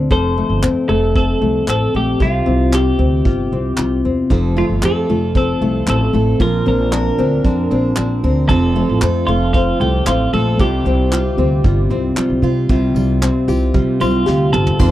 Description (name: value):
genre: acoustic pop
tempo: 114 BPM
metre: 4/4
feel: straight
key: unclear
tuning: A4 = 435 Hz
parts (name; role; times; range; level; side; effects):
- nylon-string guitar; accompaniment; 0.0-14.9 s; F2 to A4; -18 LUFS; left 4 dB; none
- upright bass; bass; 0.0-14.9 s; F1 to C3; -18 LUFS; right 1 dB; none
- twelve-string electric guitar; melody; 0.1-14.9 s; F4 to C5; -21 LUFS; right 1 dB; spring reverb
- soft brush drum kit; drums; 0.1-14.9 s; crash cymbal, handclaps, kick drum, snare drum, tambourine, toms; -18 LUFS; right 1 dB; none
- picked steel-string acoustic guitar; arpeggios; 4.3-14.9 s; F3 to Bb4; -23 LUFS; right 7 dB; none
- mellow tonewheel organ; sustained chords; 14.8-14.9 s; A4 to C6; -23 LUFS; right 4 dB; slow rotary speaker
room: little or no reverb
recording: dry, close 1970s-style studio recording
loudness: -13 LUFS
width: side -14 dB against mid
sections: 0.0-12.7 A section; 12.7-14.8 B section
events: drum fill 14.3-14.8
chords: 0.1 F; 2.2 Csus4; 4.3 F; 6.4 Bbadd9; 8.5 F; 10.6 Csus4